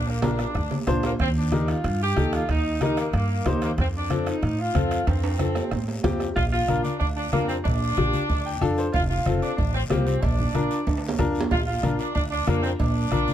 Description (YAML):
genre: latin, cumbia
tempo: 186 BPM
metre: 4/4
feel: straight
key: Bb major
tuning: A4 = 441 Hz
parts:
  - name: mellow saxophone section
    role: melody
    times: 0.0-13.3 s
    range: Bb3 to G4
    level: -28 LUFS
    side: right 1 dB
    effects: none
  - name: upright bass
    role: bass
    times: 0.0-13.2 s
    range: F1 to A2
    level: -26 LUFS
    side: equal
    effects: none
  - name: bright upright piano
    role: accompaniment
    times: 0.2-13.3 s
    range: C4 to G5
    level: -28 LUFS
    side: left 4 dB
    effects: none
  - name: bombo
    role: percussion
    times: 0.2-13.3 s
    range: none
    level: -28 LUFS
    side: right 2 dB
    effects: none
  - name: congas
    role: percussion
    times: 0.2-13.3 s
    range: none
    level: -29 LUFS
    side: left 3 dB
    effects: none
  - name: guiro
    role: percussion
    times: 0.2-13.3 s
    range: none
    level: -43 LUFS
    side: left 6 dB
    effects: none
  - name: timbales and cowbell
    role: percussion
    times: 0.2-13.0 s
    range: none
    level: -33 LUFS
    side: right 5 dB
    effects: none
room: light reverb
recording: none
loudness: -21 LUFS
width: side -11 dB against mid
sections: 0.0-6.4 A section; 6.4-13.3 B section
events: drum fill 0.0-1.2, 5.1-6.4, 10.9-11.5; upright piano fill 8.3-8.9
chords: 0.0 Bb; 1.2 Eb; 3.8 F; 6.4 Bb; 8.9 F; 10.2 Bb